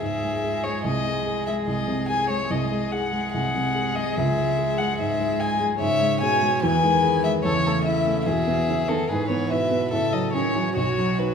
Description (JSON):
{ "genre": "quick classical-period movement for piano quartet", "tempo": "145 BPM", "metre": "4/4", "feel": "straight", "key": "C# minor, E major from 5.8 s", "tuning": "A4 = 441 Hz", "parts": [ { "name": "warm violin", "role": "melody", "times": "0.0-11.3 s", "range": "A4 to G#5", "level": "-24 LUFS", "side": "left 4 dB", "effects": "none" }, { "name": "rich cello", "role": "second line", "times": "0.0-11.3 s", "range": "B2 to G#3", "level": "-29 LUFS", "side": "right 6 dB", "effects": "none" }, { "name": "warm violin", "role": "second line", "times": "0.0-11.3 s", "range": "E4 to C#5", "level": "-31 LUFS", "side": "left 2 dB", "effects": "none" }, { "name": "warm baby grand piano", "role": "accompaniment", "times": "0.0-11.3 s", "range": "B1 to G#4", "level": "-25 LUFS", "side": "equal", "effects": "none" } ], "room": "wet recital hall reverb, RT60 1.5 s", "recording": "minimal, uncompressed stereo recording", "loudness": "-21 LUFS", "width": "side -6 dB against mid", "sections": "0.0-11.3 A section", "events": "none", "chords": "0.0 C#m; 0.8 G#/B#; 4.2 C#m; 5.8 E/G#; 6.6 E; 7.4 A/E; 8.3 E; 9.1 E/G#; 9.9 F#m/A; 10.8 B" }